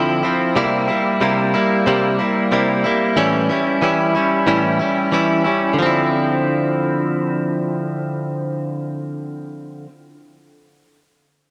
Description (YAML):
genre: indie pop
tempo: 92 BPM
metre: 4/4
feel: straight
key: D minor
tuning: A4 = 440 Hz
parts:
  - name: direct-recorded clean electric guitar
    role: solo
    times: 0.0-9.9 s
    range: A2 to E4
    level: -18 LUFS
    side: equal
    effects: lush chorus, vibrato effect, tape echo
room: wet lush hall reverb, RT60 2.9 s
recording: dreamy mix soaked in reverb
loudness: -18 LUFS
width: mono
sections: 0.0-5.8 A section; 5.8-8.4 B section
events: none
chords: 0.0 Dm9; 0.6 C7; 3.2 A7; 5.8 Dm9